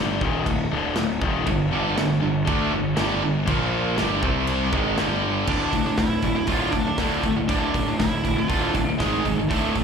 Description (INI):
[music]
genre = heavy metal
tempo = 120 BPM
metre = 4/4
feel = straight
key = D minor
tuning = A4 = 441 Hz
[part]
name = heavy high-gain guitar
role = riff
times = 0.0-9.8 s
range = D2 to D4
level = -26 LUFS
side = left 10 dB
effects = distortion, slapback echo
[part]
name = fuzz picked electric bass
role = bass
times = 0.0-9.8 s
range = D1 to D2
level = -26 LUFS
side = right 1 dB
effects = overdrive
[part]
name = big rock drum kit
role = drums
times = 0.2-9.8 s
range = crash cymbal, hi-hat, kick drum, snare drum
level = -28 LUFS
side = equal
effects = none
[part]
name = tight distorted guitar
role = riff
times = 1.5-9.8 s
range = D2 to D4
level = -26 LUFS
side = right 14 dB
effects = distortion
[part]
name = high-gain lead guitar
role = melody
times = 5.5-9.8 s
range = G#3 to F4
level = -27 LUFS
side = right 4 dB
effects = distortion
[sound]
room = light reverb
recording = live gig heard through the venue's PA, club reverb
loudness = -20 LUFS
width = side -6 dB against mid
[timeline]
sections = 0.0-5.5 A section; 5.5-9.8 B section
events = none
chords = 0.0 D5; 1.5 G5; 3.5 Bb5; 4.0 G5; 4.2 C5; 4.7 G5; 5.5 D5; 9.0 G#5